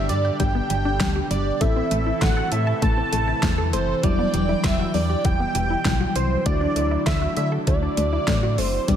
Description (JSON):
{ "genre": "synth-pop", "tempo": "99 BPM", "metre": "4/4", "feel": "straight", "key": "unclear", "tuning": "A4 = 440 Hz", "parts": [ { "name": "wide unison lead", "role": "melody", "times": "0.0-9.0 s", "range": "C5 to A5", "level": "-25 LUFS", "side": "right 2 dB", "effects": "shimmer reverb" }, { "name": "FM electric piano with soft pad layer", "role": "accompaniment", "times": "0.0-9.0 s", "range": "F#3 to A4", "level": "-29 LUFS", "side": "left 3 dB", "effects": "chorus, shimmer reverb" }, { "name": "chorused pulse-width pad", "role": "sustained chords", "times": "0.0-9.0 s", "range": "B2 to G5", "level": "-30 LUFS", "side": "right 1 dB", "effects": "shimmer reverb" }, { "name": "wide unison pluck", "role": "arpeggios", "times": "0.0-9.0 s", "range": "G3 to A5", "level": "-30 LUFS", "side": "left 2 dB", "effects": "ping-pong delay, shimmer reverb" }, { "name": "solid FM bass", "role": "bass", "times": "0.0-9.0 s", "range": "E1 to D3", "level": "-25 LUFS", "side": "equal", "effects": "none" }, { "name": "pop drum kit", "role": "drums", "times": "0.1-9.0 s", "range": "hi-hat, kick drum, snare drum", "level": "-24 LUFS", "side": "equal", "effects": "overdrive, gated reverb" } ], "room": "light reverb, digital ambience", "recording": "none", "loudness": "-19 LUFS", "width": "side -9 dB against mid", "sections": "0.0-9.0 A section", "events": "none", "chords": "0.0 G; 1.6 Am; 4.0 Emadd9; 6.5 Dadd9" }